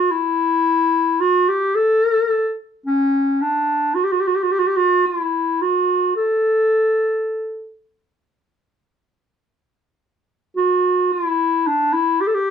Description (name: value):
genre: turkish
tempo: 109 BPM (eighths)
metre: 10/8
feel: straight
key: A makam hicaz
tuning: A4 = 439 Hz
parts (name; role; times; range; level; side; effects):
- mellow clarinet; solo; 0.0-12.5 s; C#4 to A4; -16 LUFS; equal; none
room: moderate small room reverb, RT60 0.6 s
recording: dark, warm production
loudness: -16 LUFS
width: side -8 dB against mid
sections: 0.0-8.4 A section; 8.4-12.5 B section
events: none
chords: none